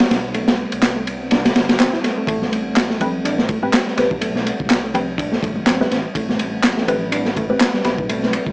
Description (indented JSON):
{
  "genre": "breakbeat, breaks",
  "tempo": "124 BPM",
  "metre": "4/4",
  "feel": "swing 56% on 16ths",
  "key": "A minor",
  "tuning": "A4 = 440 Hz",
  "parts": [
    { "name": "warbly tape-like pad", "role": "sustained chords", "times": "0.2-8.5 s", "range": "G3 to B4", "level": "-28 LUFS", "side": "equal", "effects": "none" },
    { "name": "reed electric piano", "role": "riff", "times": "0.0-8.5 s", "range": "G3 to E4", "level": "-25 LUFS", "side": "equal", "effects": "medium tremolo, tape echo" },
    { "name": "crunchy breakbeat drum kit", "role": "drums", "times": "0.0-8.5 s", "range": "kick drum, ride cymbal, snare drum", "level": "-18 LUFS", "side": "equal", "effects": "none" },
    { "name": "dark detuned saw bass", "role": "bass", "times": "0.1-8.5 s", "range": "G1 to C2", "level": "-30 LUFS", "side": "equal", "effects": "tube saturation" },
    { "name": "electronic handclaps", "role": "drums", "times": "0.8-7.7 s", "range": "none", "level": "-22 LUFS", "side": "equal", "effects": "none" },
    { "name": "congas", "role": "percussion", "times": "2.4-8.3 s", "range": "none", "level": "-27 LUFS", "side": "equal", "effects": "none" },
    { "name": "filtered dub chord stab", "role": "stabs", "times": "3.0-8.0 s", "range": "A3 to B4", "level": "-22 LUFS", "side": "left 1 dB", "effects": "phaser, vintage 12-bit sampler grit, tape echo" }
  ],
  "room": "moderate studio reverb, RT60 0.6 s",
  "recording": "dry, gritty hardware recording, vinyl crackle, small speaker sound",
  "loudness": "-16 LUFS",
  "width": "side -29 dB against mid",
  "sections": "0.0-8.5 A section",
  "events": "none",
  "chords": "0.0 Am9"
}